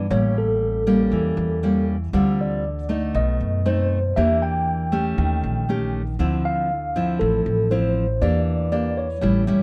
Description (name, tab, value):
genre	bossa nova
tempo	118 BPM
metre	4/4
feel	straight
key	D minor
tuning	A4 = 442 Hz
part	mellow tine electric piano	melody	0.0-9.6 s	A4 to G5	-27 LUFS	equal	none
part	nylon-string guitar	accompaniment	0.0-9.6 s	A2 to G4	-25 LUFS	equal	none
part	upright bass	bass	0.0-9.6 s	A1 to F#2	-26 LUFS	equal	none
room	moderate studio reverb, RT60 0.7 s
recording	dark, warm production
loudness	-22 LUFS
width	mono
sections	0.0-9.6 A section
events	none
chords	0.1 A7b9; 2.1 Dm7; 3.1 B7b9; 4.2 Em7b5; 5.2 Eb7#11; 6.2 Dm9; 8.2 Em7b5